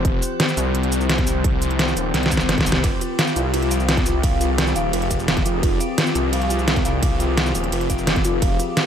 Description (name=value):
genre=dark technical drum and bass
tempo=172 BPM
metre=4/4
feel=straight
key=F minor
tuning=A4 = 437 Hz
part: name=metallic inharmonic drone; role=sustained chords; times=0.0-8.9 s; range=F3 to C5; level=-26 LUFS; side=left 2 dB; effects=chorus, built-in reverb, vintage 12-bit sampler grit, sidechain pumping
part: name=wide detuned saw bass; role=bass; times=0.0-8.6 s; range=Eb1 to C2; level=-22 LUFS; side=equal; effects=chorus, tube saturation, sidechain pumping
part: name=dubstep drum kit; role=drums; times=0.0-8.8 s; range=cabasa, hi-hat, ride cymbal, snare drum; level=-22 LUFS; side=equal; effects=none
part: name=electronic kick drum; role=drums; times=0.0-8.5 s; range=none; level=-22 LUFS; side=equal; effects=none
part: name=dark detuned synth bell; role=arpeggios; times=2.8-8.9 s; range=F4 to F5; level=-25 LUFS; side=equal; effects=chorus, phaser, sidechain pumping, ping-pong delay
room=light reverb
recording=dark, warm production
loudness=-17 LUFS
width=side -8 dB against mid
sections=0.0-8.9 A section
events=drum fill 2.1-2.8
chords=0.0 Fmadd9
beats=| 0.05 0.40 0.75 1.09 | 1.44 1.79 2.14 2.49 | 2.84 3.19 3.54 3.89 | 4.24 4.58 4.93 5.28 | 5.63 5.98 6.33 6.68 | 7.03 7.37 7.72 8.07 | 8.42 8.77